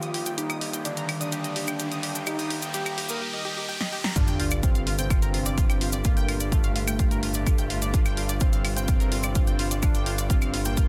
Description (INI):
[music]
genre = melodic techno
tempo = 127 BPM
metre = 4/4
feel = straight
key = G minor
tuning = A4 = 440 Hz
[part]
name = unison lead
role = melody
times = 0.0-10.9 s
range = A3 to Bb4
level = -36 LUFS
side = equal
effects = sidechain pumping, delay
[part]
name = evolving wavetable pad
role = sustained chords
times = 0.0-10.9 s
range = Eb3 to A4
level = -39 LUFS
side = equal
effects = chorus, built-in reverb, sidechain pumping
[part]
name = analog pluck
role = arpeggios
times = 0.0-10.9 s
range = F4 to G6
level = -37 LUFS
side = equal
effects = chorus, sidechain pumping, dub echo
[part]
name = gritty driven synth bass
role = bass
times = 0.0-10.9 s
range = G1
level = -33 LUFS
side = equal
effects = sidechain pumping, high-pass filter
[part]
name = punchy analog drum machine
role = drums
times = 0.0-10.9 s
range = claves, hi-hat, snare drum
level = -34 LUFS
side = equal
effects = overdrive
[part]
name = cabasa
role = percussion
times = 0.0-10.9 s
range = none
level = -37 LUFS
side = equal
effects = none
[part]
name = riser and sub drop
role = sound effects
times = 0.2-6.0 s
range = none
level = -36 LUFS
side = equal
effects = none
[part]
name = electronic kick drum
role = drums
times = 4.2-10.9 s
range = none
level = -25 LUFS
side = equal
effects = none
[sound]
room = light reverb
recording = dense, heavily limited modern master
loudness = -25 LUFS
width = mono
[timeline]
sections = 0.0-4.2 A section; 4.2-10.9 B section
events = build-up 0.0-4.2; riser 0.2-4.2; filter sweep on analog synth lead 0.0-4.2; drum fill 3.8-4.2; drop 4.2-10.9; impact 4.2-6.0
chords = 0.0 Eb/G; 4.2 G7(no3)